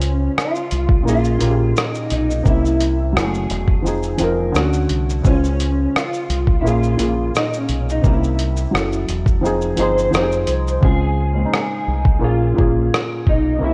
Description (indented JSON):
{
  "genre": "lo-fi hip hop",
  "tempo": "86 BPM",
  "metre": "4/4",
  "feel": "swing 55% on 16ths",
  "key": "unclear",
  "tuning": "A4 = 438 Hz",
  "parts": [
    { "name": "electric guitar through a small old amp", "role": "melody", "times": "0.0-13.7 s", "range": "Db4 to C5", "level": "-25 LUFS", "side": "equal", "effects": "ensemble chorus, low-pass filter" },
    { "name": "felt-muted upright piano", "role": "accompaniment", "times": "0.0-13.7 s", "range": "Bb2 to C5", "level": "-24 LUFS", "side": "equal", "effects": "low-pass filter" },
    { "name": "deep dub fingered electric bass", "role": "bass", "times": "0.0-13.7 s", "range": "Fb1 to D2", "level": "-23 LUFS", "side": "equal", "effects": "transformer saturation" },
    { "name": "lo-fi sampler-style drum kit", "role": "drums", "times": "0.0-13.4 s", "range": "hi-hat, kick drum, rim click, shaker", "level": "-21 LUFS", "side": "equal", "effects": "none" }
  ],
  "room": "light reverb",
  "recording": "worn, warbling old tape, cassette tape, warbly pitch drift",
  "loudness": "-18 LUFS",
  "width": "mono",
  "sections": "0.0-10.8 A section; 10.8-13.7 B section",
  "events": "hi-hats muted 10.8-13.7",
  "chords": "0.0 Dbmaj7; 1.1 Bbm7; 2.5 C7b9; 3.2 Gbm7; 3.9 Fm7; 4.5 Dmaj7; 5.2 Dbmaj7; 6.6 Bbm7; 8.0 C7b9; 8.7 Gbm7; 9.4 Fm7; 10.8 Dbmaj7; 12.2 Bbm7"
}